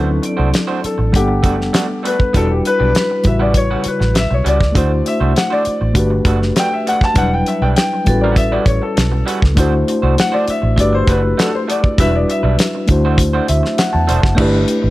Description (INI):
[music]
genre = lush 1970s-style soul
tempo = 100 BPM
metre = 4/4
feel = straight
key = G major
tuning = A4 = 441 Hz
[part]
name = warm grand piano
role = melody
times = 0.0-12.9 s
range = G4 to A5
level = -19 LUFS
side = left 2 dB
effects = tube saturation
[part]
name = mellow reed electric piano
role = accompaniment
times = 0.0-14.9 s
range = C#3 to A5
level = -18 LUFS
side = left 1 dB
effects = fast tremolo
[part]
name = electric guitar through a small old amp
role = riff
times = 0.0-14.9 s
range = G3 to C5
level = -24 LUFS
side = right 5 dB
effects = none
[part]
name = vintage muted fingered electric bass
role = bass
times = 0.0-14.9 s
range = E1 to E2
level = -17 LUFS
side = equal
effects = none
[part]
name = vibraphone with hard mallets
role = texture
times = 0.0-3.5, 8.1-14.9 s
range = C#4 to D5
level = -30 LUFS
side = right 3 dB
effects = none
[part]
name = damped 70s drum kit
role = drums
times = 0.2-14.8 s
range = crash cymbal, hi-hat, kick drum, snare drum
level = -16 LUFS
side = equal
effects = none
[sound]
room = light reverb, small room reverb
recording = none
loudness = -12 LUFS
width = side -17 dB against mid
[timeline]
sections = 0.0-14.4 A section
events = grand piano solo 0.0-14.4; reed electric piano fill 13.2-14.4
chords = 0.0 D7; 1.1 Gmaj9; 2.3 Em7; 3.2 A13; 4.8 D7; 6.0 Gmaj9; 7.2 Em7; 8.1 A13; 9.6 D7; 10.8 Gmaj9; 12.0 Em7; 12.9 D7; 14.4 G69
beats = 0.53 1.14 1.74 | 2.34 2.95 3.55 4.15 | 4.75 5.36 5.96 6.56 | 7.16 7.76 8.37 8.97 | 9.57 10.17 10.78 11.38 | 11.98 12.58 13.18 13.78 | 14.38